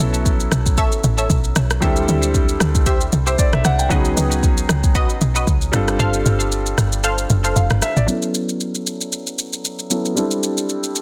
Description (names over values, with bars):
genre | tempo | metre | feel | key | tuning
amapiano | 115 BPM | 4/4 | swing 55% on 16ths | unclear | A4 = 440 Hz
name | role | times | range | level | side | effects
warm concert grand piano | accompaniment | 0.0-11.0 s | F#3 to G5 | -25 LUFS | equal | low-pass filter
punchy chord stab | stabs | 0.0-7.6 s | F#4 to F5 | -26 LUFS | equal | chorus, phaser, digital delay
tight log drum bass | bass | 0.0-8.1 s | F1 to D2 | -21 LUFS | equal | none
afro-pop drum kit | drums | 0.0-11.0 s | kick drum, rim click, shaker | -22 LUFS | equal | soft clipping on snare
room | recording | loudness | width
light reverb, digital ambience | dense, heavily limited modern master | -18 LUFS | mono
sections
0.0-8.1 A section; 8.1-11.0 B section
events
drop 0.0-8.1; kick muted 6.0-8.1; filter sweep on grand piano 8.1-11.0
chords
0.0 B9sus4; 1.8 D9sus4; 3.9 C#9sus4; 5.7 G9sus4; 8.1 B9sus4; 10.2 D9sus4